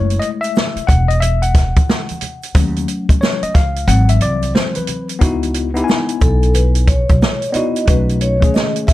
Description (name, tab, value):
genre	hip hop, jazz-hop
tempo	90 BPM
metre	4/4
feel	swing 64% on 16ths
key	C# minor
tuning	A4 = 440 Hz
part	mellow tine electric piano	accompaniment	0.0-8.9 s	D#3 to G#5	-20 LUFS	left 4 dB	medium stereo tremolo, plate reverb
part	upright bass	bass	0.0-8.9 s	E1 to D#2	-16 LUFS	equal	none
part	open jazz drum kit	drums	0.1-8.9 s	hi-hat, kick drum, snare drum	-15 LUFS	equal	none
part	tube shaker and congas	percussion	0.1-8.9 s	none	-32 LUFS	right 4 dB	none
part	vibraphone with soft mallets	melody	6.2-8.9 s	A4 to E5	-20 LUFS	right 1 dB	plate reverb
room	light reverb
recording	none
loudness	-13 LUFS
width	side -16 dB against mid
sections	0.0-5.2 A section; 5.2-8.9 B section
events	tine electric piano solo 0.0-5.2; kick muted 3.9-5.2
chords	0.0 F#m9; 2.5 D#m7b5; 3.9 G#aug7; 5.2 C#m11; 7.9 B9